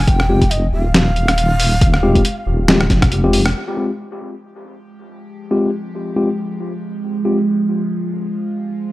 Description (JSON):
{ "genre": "deep dubstep", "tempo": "138 BPM", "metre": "4/4", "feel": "swing 56% on 16ths, half-time", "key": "F minor", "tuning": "A4 = 440 Hz", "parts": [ { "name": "breathy long shakuhachi", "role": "melody", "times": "0.0-3.1 s", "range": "Eb5 to G5", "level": "-23 LUFS", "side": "equal", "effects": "low-pass filter, dub echo" }, { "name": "deep soft wobble bass", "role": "bass", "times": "0.0-3.5 s", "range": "Eb1 to F1", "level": "-16 LUFS", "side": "equal", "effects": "chorus" }, { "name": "electronic kick drum", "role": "drums", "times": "0.1-3.1 s", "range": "none", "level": "-15 LUFS", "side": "equal", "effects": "overdrive, small room reverb" }, { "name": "trip hop sampler-style drum kit", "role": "drums", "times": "0.1-3.5 s", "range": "hi-hat, rim click, snare drum", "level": "-17 LUFS", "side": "equal", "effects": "overdrive, low-pass filter on snare, small room reverb, low-pass filter on hats" }, { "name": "mellow tine electric piano", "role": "stabs", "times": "0.3-7.4 s", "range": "Ab3 to G4", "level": "-20 LUFS", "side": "left 2 dB", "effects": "low-pass filter, dub echo" }, { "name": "overtone-sweeping drone", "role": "sustained chords", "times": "5.4-8.9 s", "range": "F3 to G4", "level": "-21 LUFS", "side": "right 2 dB", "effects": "chorus, built-in reverb, phaser" } ], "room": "moderate echo chamber reverb, RT60 1.3 s", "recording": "dry, gritty hardware recording, transformer saturation", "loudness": "-14 LUFS", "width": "side -17 dB against mid", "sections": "0.0-3.6 A section; 3.6-8.9 B section", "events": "drop 0.0-3.6; band accent 3.4; filter sweep on tine electric piano 3.6-8.9; filter sweep on synth drone 3.6-8.9", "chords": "0.0 Fmadd9", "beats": "| 0.07 0.51 0.94 1.38 | 1.81 2.25 2.68 3.12 | 3.55 3.99 4.42 4.86 | 5.29 5.73 6.16 6.60 | 7.03 7.47 7.90 8.34 | 8.77" }